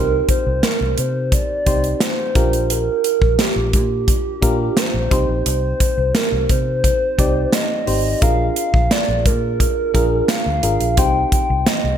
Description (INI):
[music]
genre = 1980s-style pop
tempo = 87 BPM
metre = 4/4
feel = straight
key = unclear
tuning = A4 = 437 Hz
[part]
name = hollow clarinet-like synth lead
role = melody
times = 0.0-12.0 s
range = G4 to G5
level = -20 LUFS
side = right 2 dB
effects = chorus, ping-pong delay
[part]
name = mellow FM electric piano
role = accompaniment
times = 0.0-12.0 s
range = C4 to D5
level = -24 LUFS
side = left 1 dB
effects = chorus
[part]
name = vintage muted fingered electric bass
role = bass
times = 0.0-12.0 s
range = Ab1 to C3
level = -21 LUFS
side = left 1 dB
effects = none
[part]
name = modern studio drum kit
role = drums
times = 0.3-11.8 s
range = hi-hat, kick drum, snare drum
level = -18 LUFS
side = equal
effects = gated reverb
[sound]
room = moderate plate reverb, RT60 2.1 s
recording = bright 1980s-style digital production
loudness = -15 LUFS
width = side -9 dB against mid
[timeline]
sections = 0.0-12.0 A section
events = none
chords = 0.0 Cm; 2.4 Gm7/Bb; 5.1 Cm; 8.2 Bb7; 11.0 Cm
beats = 0.63 1.32 2.01 | 2.70 3.39 4.08 4.77 | 5.46 6.15 6.84 7.53 | 8.22 8.91 9.60 10.29 | 10.98 11.67